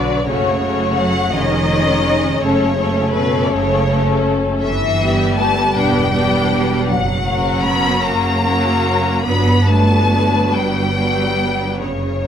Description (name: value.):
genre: classical, slow romantic movement for string orchestra.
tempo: 45-56 BPM (dotted quarters).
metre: 6/8.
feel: rubato.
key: unclear.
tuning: A4 = 436 Hz.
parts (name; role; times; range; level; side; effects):
rich studio violin section; melody; 0.0-12.3 s; B4 to B5; -20 LUFS; left 3 dB; none.
rich studio violin section; second line; 0.0-11.8 s; C#4 to C#5; -21 LUFS; left 5 dB; none.
rich studio viola section; accompaniment; 0.0-11.8 s; F#3 to D4; -21 LUFS; right 1 dB; none.
rich studio cello section; bass; 0.0-12.3 s; B2 to B3; -22 LUFS; right 3 dB; none.
rich studio double bass section; bass; 0.0-12.3 s; E1 to B1; -20 LUFS; right 2 dB; none.
room: light reverb.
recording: close, detailed microphones.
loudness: -14 LUFS.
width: side -8 dB against mid.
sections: 0.0-12.3 A section.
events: none.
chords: 0.2 F#m; 1.3 C#/E#; 2.4 F#m; 4.6 Em/G; 5.8 Em7; 6.9 F#; 9.2 Gmaj7.